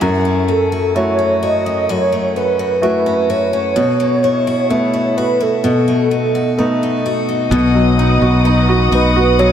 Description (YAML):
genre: pop ballad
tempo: 64 BPM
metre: 4/4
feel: straight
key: unclear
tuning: A4 = 440 Hz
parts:
  - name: clear concert grand piano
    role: accompaniment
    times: 0.0-9.5 s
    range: F#2 to F#4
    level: -17 LUFS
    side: equal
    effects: none
  - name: picked steel-string acoustic guitar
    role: arpeggios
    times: 0.0-9.5 s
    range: F#2 to F#4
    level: -20 LUFS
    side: left 2 dB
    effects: tape echo
  - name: warm velvety synth lead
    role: melody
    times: 0.5-9.5 s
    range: A4 to D#5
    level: -17 LUFS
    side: right 1 dB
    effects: chorus, tape echo
  - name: muted studio string section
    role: sustained chords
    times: 7.5-9.5 s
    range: B4 to D#6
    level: -19 LUFS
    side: left 1 dB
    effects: none
  - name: modern bright fingered electric bass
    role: bass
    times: 7.5-9.5 s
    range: B1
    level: -14 LUFS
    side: equal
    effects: none
room: wet lush hall reverb, RT60 2.4 s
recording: dreamy mix soaked in reverb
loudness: -12 LUFS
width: side -9 dB against mid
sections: 0.0-7.5 A section; 7.5-9.5 B section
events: none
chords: 0.0 F#m7; 3.8 B7sus4; 5.6 B7; 7.5 B